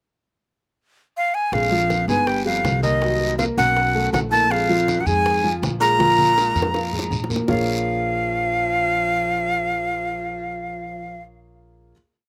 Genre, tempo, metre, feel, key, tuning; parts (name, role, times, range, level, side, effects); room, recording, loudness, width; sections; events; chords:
Afro-Cuban jazz; 161 BPM; 4/4; straight; Bb minor; A4 = 438 Hz
breathy bright jazz flute; melody; 1.2-11.2 s; D#5 to Bb5; -23 LUFS; equal; slapback echo
bright baritone saxophone; second line; 1.5-11.2 s; D#2 to F3; -30 LUFS; equal
warm upright piano; accompaniment; 1.5-11.9 s; F3 to F#5; -27 LUFS; equal
upright bass; bass; 1.5-11.9 s; G1 to F2; -30 LUFS; equal
bongos; percussion; 1.5-7.6 s; -33 LUFS; equal; slapback echo
congas; percussion; 1.5-7.6 s; -33 LUFS; equal
guiro; percussion; 1.5-7.6 s; -36 LUFS; equal
light reverb; recorded outdoors, with no room sound; -20 LUFS; mono
0.0-1.5 pickup bar; 1.5-7.5 A section; 7.5-10.5 final chord
drum fill 6.0-7.5
0.0 N.C.; 1.5 Bb5; 2.3 G7alt; 3.0 Cm7b5; 3.8 B5; 4.5 Bb5; 7.5 Bbm7